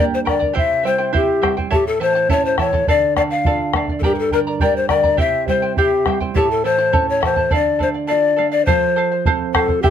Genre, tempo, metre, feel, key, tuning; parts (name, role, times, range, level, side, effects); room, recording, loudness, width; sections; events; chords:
andean folk, Andean ensemble; 103 BPM; 2/4; straight; D minor; A4 = 441 Hz
breathy large pan pipes; melody; 0.0-9.9 s; G4 to F5; -17 LUFS; left 5 dB
charango; accompaniment; 0.0-9.9 s; E4 to Bb5; -22 LUFS; right 5 dB
nylon-string guitar; accompaniment; 0.0-9.9 s; G2 to A4; -24 LUFS; right 7 dB
bombo; percussion; 0.3-9.9 s; -20 LUFS; equal
little or no reverb; close, detailed microphones; -15 LUFS; side -9 dB against mid
0.0-8.7 A section; 8.7-9.9 B section
0.0 Gm; 0.5 C; 1.7 A; 2.9 Dm; 4.0 Gm; 5.2 C; 6.4 A; 7.5 Dm; 8.7 F